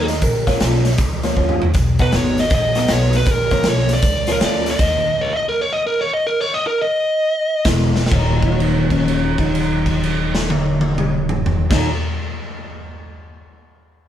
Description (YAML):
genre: electric blues shuffle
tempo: 126-158 BPM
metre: 4/4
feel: swing 65% on 8ths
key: Eb minor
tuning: A4 = 440 Hz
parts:
  - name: biting lead guitar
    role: melody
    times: 0.0-7.6 s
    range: Bb4 to D#5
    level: -18 LUFS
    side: equal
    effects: overdrive
  - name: clean lap steel guitar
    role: second line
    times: 0.0-0.6, 8.5-11.9 s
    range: Db4 to Eb5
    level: -25 LUFS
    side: right 2 dB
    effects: none
  - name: electric guitar through a small old amp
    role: riff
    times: 0.0-4.7, 7.7-11.9 s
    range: Eb2 to F#4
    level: -21 LUFS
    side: left 2 dB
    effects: phaser
  - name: upright bass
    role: bass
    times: 0.0-5.1, 7.7-11.9 s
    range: Eb1 to Eb2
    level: -21 LUFS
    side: equal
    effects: none
  - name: raw garage drum kit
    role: drums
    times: 0.1-4.9, 7.6-11.8 s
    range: crash cymbal, hi-hat, kick drum, snare drum, toms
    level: -19 LUFS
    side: equal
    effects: none
room: light reverb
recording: band playing live in one room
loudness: -15 LUFS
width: side -10 dB against mid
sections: 0.0-8.1 A section; 8.1-11.9 B section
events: drum fill 1.4-1.7, 7.9; slowing down 4.8-8.1; stop 4.8-7.6; held note 8.1-11.6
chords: 0.2 Bb; 1.7 Bmaj7; 3.3 Bb; 4.8 Eb5; 7.6 E; 8.1 Ebm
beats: | 0.22 0.60 0.98 1.36 | 1.75 2.13 2.51 2.89 | 3.27 3.65 4.03 4.41 | 4.79 5.17 5.56 5.96 | 6.36 6.77 7.20 7.65 | 8.11 8.59 9.07 9.54 | 10.02 10.50 10.98 11.46